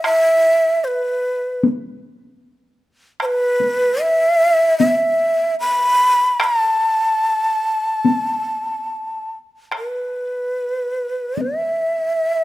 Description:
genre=japanese traditional, Japanese chamber music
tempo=74 BPM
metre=4/4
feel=rubato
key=unclear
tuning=A4 = 440 Hz
part: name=breathy mellow shakuhachi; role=melody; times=0.0-12.4 s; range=B4 to B5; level=-16 LUFS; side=equal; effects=none
part: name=taiko ensemble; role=percussion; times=0.0-11.6 s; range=none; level=-20 LUFS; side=left 2 dB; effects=none
room=light reverb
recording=close, detailed microphones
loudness=-16 LUFS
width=side -16 dB against mid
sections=0.0-9.7 A section; 9.7-12.4 B section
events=none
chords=none

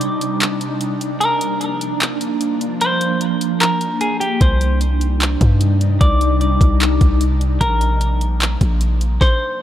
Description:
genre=hip hop, atmospheric cloud-rap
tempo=150 BPM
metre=4/4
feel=half-time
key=unclear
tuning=A4 = 440 Hz
part: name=ethereal airy pad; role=sustained chords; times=0.0-9.2 s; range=C3 to Eb4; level=-21 LUFS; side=equal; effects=ensemble chorus, built-in reverb, phaser, sidechain pumping
part: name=smooth R&B drum kit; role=drums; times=0.0-9.3 s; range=handclaps, hi-hat, kick drum, snare drum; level=-18 LUFS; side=equal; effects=none
part: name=semi-hollow electric guitar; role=melody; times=1.2-9.6 s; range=G4 to D5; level=-21 LUFS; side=equal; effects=spring reverb, digital delay
part: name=warm 808-style bass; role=bass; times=4.4-9.2 s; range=Bb1 to G2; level=-16 LUFS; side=equal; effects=none
room=light reverb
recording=none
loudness=-14 LUFS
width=side -11 dB against mid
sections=0.0-9.6 A section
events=break 0.0-4.4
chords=0.0 Cmadd9; 1.2 Bb; 4.4 Cmadd9; 7.6 Bb

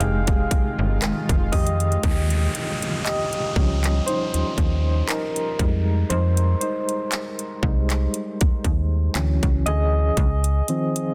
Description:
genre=contemporary R&B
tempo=59 BPM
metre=4/4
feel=swing 54% on 16ths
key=unclear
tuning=A4 = 441 Hz
part: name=soft electric-piano-like synth keys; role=accompaniment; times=0.0-11.1 s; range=Eb3 to F5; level=-28 LUFS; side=equal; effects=chorus, tremolo
part: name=granular cloud pad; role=sustained chords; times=0.0-2.0, 11.1 s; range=Eb3 to F4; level=-32 LUFS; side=equal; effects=built-in reverb
part: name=slap-like FM bass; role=bass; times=0.0-10.6 s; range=F1 to F2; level=-24 LUFS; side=equal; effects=none
part: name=trap drum kit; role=drums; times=0.0-11.1 s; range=handclaps, hi-hat, kick drum, rim click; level=-25 LUFS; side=equal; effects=none
part: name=downlifter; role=sound effects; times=2.0-10.2 s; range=none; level=-34 LUFS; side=equal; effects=none
room=little or no reverb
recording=dense, heavily limited modern master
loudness=-22 LUFS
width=mono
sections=0.0-2.0 A section; 2.0-11.1 B section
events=synth keys solo 0.0-2.0, 2.0-11.1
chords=0.0 Fm7; 2.0 Eb9; 5.6 Fm9; 9.2 Dmaj7; 10.2 Dbmaj7

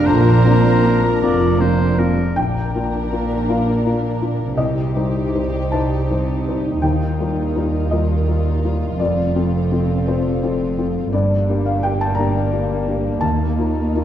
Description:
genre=cinematic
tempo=51-58 BPM (dotted quarters)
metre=6/8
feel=rubato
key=Bb major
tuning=A4 = 440 Hz
part: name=dark studio violin section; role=melody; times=0.0-14.0 s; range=F4 to Bb5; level=-35 LUFS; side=left 3 dB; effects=none
part: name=clear oboe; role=second line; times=0.0-2.4 s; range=Bb4 to D5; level=-26 LUFS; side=right 2 dB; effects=none
part: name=dark clarinet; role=second line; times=0.0-2.0 s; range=D4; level=-24 LUFS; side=left 2 dB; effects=none
part: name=dark studio violin section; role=second line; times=0.0-14.0 s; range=D4 to Bb4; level=-30 LUFS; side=left 2 dB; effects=none
part: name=dark symphonic viola section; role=accompaniment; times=0.0-14.0 s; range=D3 to Eb4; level=-26 LUFS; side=right 1 dB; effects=none
part: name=felt-muted upright piano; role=accompaniment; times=0.0-14.0 s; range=Bb1 to Bb5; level=-21 LUFS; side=left 4 dB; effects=none
part: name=mellow French horn section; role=sustained chords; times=0.0-1.8 s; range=F4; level=-24 LUFS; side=left 8 dB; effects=none
part: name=bright silver concert flute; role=second line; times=0.1-1.9 s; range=Bb4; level=-23 LUFS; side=equal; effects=none
part: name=warm symphonic cello section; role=bass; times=0.1-14.0 s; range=Eb2 to C3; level=-24 LUFS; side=right 2 dB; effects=none
part: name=warm symphonic double bass section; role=bass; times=0.1-14.0 s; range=F1 to Eb2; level=-21 LUFS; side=right 2 dB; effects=none
room=moderate scoring stage reverb, RT60 1.9 s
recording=dark, warm production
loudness=-16 LUFS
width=side -10 dB against mid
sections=0.0-2.4 A section; 2.4-14.0 B section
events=none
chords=0.1 Bbadd9; 2.4 Bb; 4.6 Cm; 6.8 Ebadd9; 9.0 F; 11.1 Gm; 13.2 Ebsus2

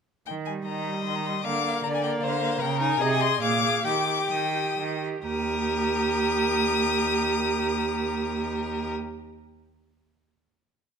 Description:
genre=quick classical-period movement for string quartet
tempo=122-156 BPM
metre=3/4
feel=straight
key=Eb major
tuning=A4 = 440 Hz
part: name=warm violin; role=melody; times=0.3-8.9 s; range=F5 to Eb6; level=-29 LUFS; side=left 9 dB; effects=none
part: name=clear cello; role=bass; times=0.3-8.9 s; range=Eb2 to Eb3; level=-30 LUFS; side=right 6 dB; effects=none
part: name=rich viola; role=accompaniment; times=0.5-8.9 s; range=G3 to Ab4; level=-29 LUFS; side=right 3 dB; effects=none
part: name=rich violin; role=second line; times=0.7-8.9 s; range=Bb4 to G5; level=-30 LUFS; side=left 5 dB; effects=none
room=moderate recital hall reverb, RT60 1.4 s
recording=close, detailed microphones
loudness=-23 LUFS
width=side -6 dB against mid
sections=0.3-5.3 A section; 5.3-8.2 final chord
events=slowing down 2.0-5.3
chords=0.3 Eb; 1.4 Bb/D; 2.6 Eb7/Db; 3.0 Ab/C; 3.4 Bb7; 3.9 Eb

